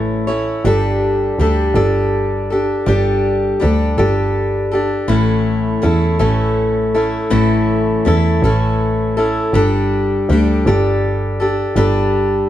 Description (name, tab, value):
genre	folk rock and heartland rock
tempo	54 BPM (dotted quarters)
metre	6/8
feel	straight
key	unclear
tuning	A4 = 440 Hz
part	picked steel-string acoustic guitar	accompaniment	0.0-12.5 s	A2 to C#5	-16 LUFS	left 1 dB	none
part	rich double bass	bass	0.0-12.4 s	G1 to E2	-17 LUFS	right 1 dB	none
room	light reverb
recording	none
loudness	-13 LUFS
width	side -12 dB against mid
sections	0.0-12.5 A section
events	none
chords	0.0 A; 0.7 Gsus2; 5.1 A; 9.6 Gsus2